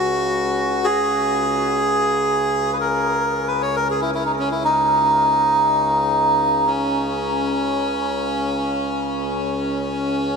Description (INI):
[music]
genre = world meditative, free-time meditation music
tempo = free time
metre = none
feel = none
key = unclear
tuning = A4 = 440 Hz
[part]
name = melodica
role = melody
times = 0.0-10.4 s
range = C#4 to C#5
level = -18 LUFS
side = right 1 dB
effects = ping-pong delay
[part]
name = hand-pumped harmonium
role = drone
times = 0.0-10.4 s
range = C#2 to C#3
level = -25 LUFS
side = left 2 dB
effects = none
[sound]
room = wet huge ambient reverb, RT60 7.3 s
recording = none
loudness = -17 LUFS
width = side -5 dB against mid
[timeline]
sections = 0.0-10.4 A section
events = none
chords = none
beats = free time